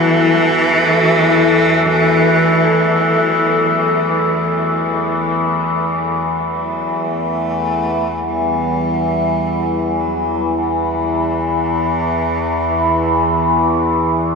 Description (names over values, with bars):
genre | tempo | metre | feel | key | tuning
dark ambient drone | free time | none | none | E minor | A4 = 439 Hz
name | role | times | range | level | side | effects
clear cello | melody | 0.0-14.3 s | E3 to A3 | -19 LUFS | right 1 dB | diffuse ambient delay
deep dark ambient pad | sustained chords | 0.0-5.9 s | E4 to E5 | -19 LUFS | left 2 dB | chorus, built-in reverb
dark detuned synth bell | arpeggios | 0.0-5.9 s | none | barely audible | none | none
overtone-sweeping drone | drone | 0.0-14.3 s | E2 to E3 | -16 LUFS | left 1 dB | chorus, built-in reverb
bronze singing bowl | texture | 0.0-5.9 s | none | barely audible | none | none
room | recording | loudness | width
wet cathedral reverb, RT60 4.7 s | none | -13 LUFS | side -4 dB against mid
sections
0.0-5.9 A section; 5.9-14.3 B section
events
fade-in on cello 5.9-14.3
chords
0.0 Esus2; 5.9 Em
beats
free time